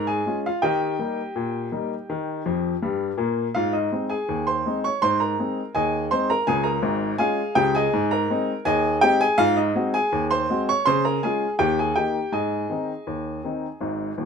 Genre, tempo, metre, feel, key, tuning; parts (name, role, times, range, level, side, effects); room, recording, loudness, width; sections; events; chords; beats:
ragtime piano; 82 BPM; 2/4; straight; Ab major; A4 = 440 Hz
clear upright piano; solo; 0.0-14.3 s; Eb1 to Db6; -21 LUFS; equal
light reverb; minimal, uncompressed stereo recording; -21 LUFS; side -6 dB against mid
0.0-14.3 A section
upright piano fill 2.5-3.6
0.0 Db; 0.6 Eb; 3.6 Ab; 6.5 Db; 7.9 Ab; 9.4 Ab7; 10.9 Db; 11.6 Eb; 12.3 Ab
| 0.63 1.36 | 2.10 2.83 | 3.56 4.30 | 5.03 5.76 | 6.49 7.22 | 7.95 8.68 | 9.41 10.14 | 10.87 11.60 | 12.33 13.07 | 13.81